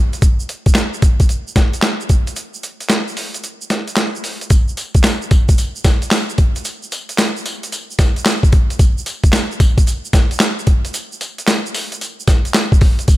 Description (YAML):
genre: R&B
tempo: 112 BPM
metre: 4/4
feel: swing 66% on 16ths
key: none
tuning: none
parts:
  - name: boom bap sampler-style drum kit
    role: drums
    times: 0.1-13.2 s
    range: handclaps, hi-hat, kick drum, snare drum, tambourine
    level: -13 LUFS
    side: equal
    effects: none
  - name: tube shaker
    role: percussion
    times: 0.1-13.2 s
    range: none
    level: -30 LUFS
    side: right 4 dB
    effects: none
room: little or no reverb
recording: none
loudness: -14 LUFS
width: side -17 dB against mid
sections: 0.0-4.5 A section; 4.5-13.2 B section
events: kick muted 3.4-4.5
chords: none